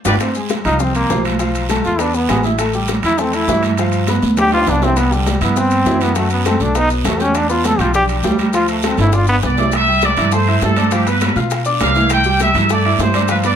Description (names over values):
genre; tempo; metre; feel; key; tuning
latin, salsa; 202 BPM; 4/4; straight; C major; A4 = 439 Hz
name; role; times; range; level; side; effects
timbales; percussion; 0.0-13.6 s; none; -24 LUFS; right 3 dB; none
bright trumpet section; melody; 0.1, 9.5-13.6 s; G4 to G5; -17 LUFS; right 1 dB; plate reverb
clear baby grand piano; accompaniment; 0.1-13.6 s; E3 to G6; -20 LUFS; left 1 dB; none
upright bass; bass; 0.1-13.6 s; G1 to B2; -18 LUFS; right 1 dB; none
bongos; percussion; 0.1-13.4 s; none; -27 LUFS; left 7 dB; none
congas; percussion; 0.1-13.6 s; none; -24 LUFS; right 1 dB; none
guiro; percussion; 0.1-13.6 s; none; -30 LUFS; right 7 dB; none
maracas; percussion; 0.1-13.6 s; none; -33 LUFS; left 7 dB; none
bright trombone; melody; 0.7-9.4 s; D3 to A4; -18 LUFS; equal; plate reverb
room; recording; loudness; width
moderate studio reverb, RT60 0.8 s; none; -13 LUFS; side -8 dB against mid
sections
0.2-9.7 A section; 9.7-13.6 B section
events
drum fill 0.0, 4.2-5.0, 9.0-9.7; band accent 0.0; trombone solo 0.2-9.7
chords
0.2 Fm; 1.4 Fmaj7#11/B; 2.0 E; 2.6 A5; 3.8 G7; 5.0 Cmaj7; 6.2 Bm7; 6.8 B7b13; 7.4 Em7; 8.5 Dm; 9.1 G; 9.7 C6; 10.9 G7; 12.1 C6